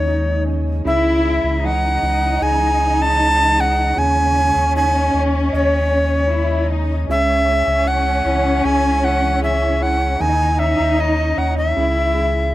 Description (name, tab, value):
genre	pop ballad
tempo	77 BPM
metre	4/4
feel	straight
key	C# minor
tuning	A4 = 443 Hz
part	bright reedy tenor recorder	melody	0.0-12.5 s	C#5 to A5	-18 LUFS	equal	none
part	dark symphonic cello section	second line	0.0-12.5 s	C#4 to E4	-22 LUFS	left 1 dB	none
part	clear concert grand piano	accompaniment	0.0-12.5 s	C#3 to D#5	-27 LUFS	right 3 dB	none
part	shimmering ambient pad	sustained chords	0.0-12.5 s	C#3 to D#5	-30 LUFS	left 1 dB	chorus, built-in reverb
part	warm sub bass	bass	0.0-12.5 s	C#2 to D#2	-20 LUFS	equal	none
room	small room ambience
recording	rough home demo mix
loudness	-15 LUFS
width	side -15 dB against mid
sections	0.0-12.5 A section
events	none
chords	0.0 G#sus4/D#; 0.9 C#m; 4.0 G#sus4/D#; 7.1 C#m; 10.2 G#sus4/D#; 11.8 C#m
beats	0.07 | 0.85 1.63 2.41 3.19 | 3.97 4.75 5.53 6.31 | 7.09 7.87 8.65 9.43 | 10.21 10.98 11.76 12.54